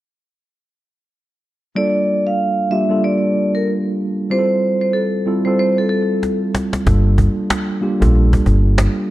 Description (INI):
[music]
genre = hip hop, boom-bap hip-hop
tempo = 94 BPM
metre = 4/4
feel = swing 58% on 16ths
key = unclear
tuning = A4 = 439 Hz
[part]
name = vibraphone with medium hard mallets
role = melody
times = 1.8-6.4 s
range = A4 to F5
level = -19 LUFS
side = equal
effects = high-pass filter, low-pass filter, slapback echo
[part]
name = mellow tine electric piano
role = accompaniment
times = 1.8-9.1 s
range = G3 to A4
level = -18 LUFS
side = right 1 dB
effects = fast stereo tremolo, high-pass filter, low-pass filter
[part]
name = cajon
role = drums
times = 6.2-9.0 s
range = none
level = -21 LUFS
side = equal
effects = none
[part]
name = deep dub fingered electric bass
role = bass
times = 6.9-8.9 s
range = G1 to Bb1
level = -13 LUFS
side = equal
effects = none
[sound]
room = light reverb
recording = dark, warm production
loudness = -14 LUFS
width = side -16 dB against mid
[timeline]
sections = 1.8-9.1 A section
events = drum fill 6.2-6.9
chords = 1.8 Gm7; 4.3 Fmaj7; 6.9 Gm7